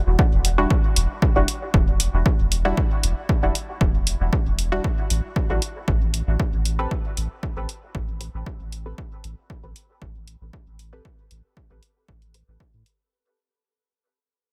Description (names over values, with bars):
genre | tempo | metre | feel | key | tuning
dub techno | 116 BPM | 4/4 | straight | unclear | A4 = 440 Hz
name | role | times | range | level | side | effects
soft dub sub bass | bass | 0.1-12.8 s | E1 to A2 | -26 LUFS | equal | tube saturation, sidechain pumping
electronic kick drum | drums | 0.2-12.7 s | none | -24 LUFS | equal | none
electronic hi-hat | drums | 0.4-13.0 s | none | -28 LUFS | equal | none
filtered dub chord stab | stabs | 0.6-11.0 s | G3 to B4 | -31 LUFS | equal | chorus, phaser, sidechain pumping, dub echo
filtered dub chord stab | riff | 1.4-12.4 s | E4 to B5 | -33 LUFS | equal | phaser, subtle chorus, cassette tape, sidechain pumping, dub echo
room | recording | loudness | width
digital ambience | none | -22 LUFS | mono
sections
0.0-13.1 A section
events
fade-out 0.0-13.1; filter sweep on synth stab 0.0-13.1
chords
0.0 N.C.; 4.8 Am9